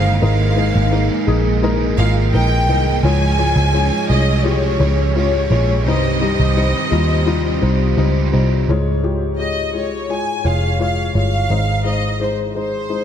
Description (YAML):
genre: pop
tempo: 85 BPM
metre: 4/4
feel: straight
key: unclear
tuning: A4 = 441 Hz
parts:
  - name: warm studio violin section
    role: melody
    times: 0.0-13.0 s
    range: C5 to Ab5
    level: -22 LUFS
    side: equal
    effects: none
  - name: felt-muted upright piano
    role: accompaniment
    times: 0.0-13.0 s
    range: G2 to Db5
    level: -20 LUFS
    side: left 5 dB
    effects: none
  - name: warm studio string section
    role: sustained chords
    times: 0.0-8.7 s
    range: Eb3 to Db4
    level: -27 LUFS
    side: right 4 dB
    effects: none
  - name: crunchy overdriven guitar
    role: riff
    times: 0.0-8.7 s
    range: Ab2 to Eb5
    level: -26 LUFS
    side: right 8 dB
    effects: ensemble chorus
  - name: vintage muted picked electric bass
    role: bass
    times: 0.0-13.0 s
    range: F1 to Eb2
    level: -17 LUFS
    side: right 1 dB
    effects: none
room: moderate lush hall reverb, RT60 1.7 s, small room ambience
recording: dreamy mix soaked in reverb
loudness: -14 LUFS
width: side -9 dB against mid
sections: 0.0-8.7 A section; 8.7-13.0 B section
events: none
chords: 0.0 Absus2; 3.0 Db; 5.9 Cm; 8.7 Db; 11.5 Ab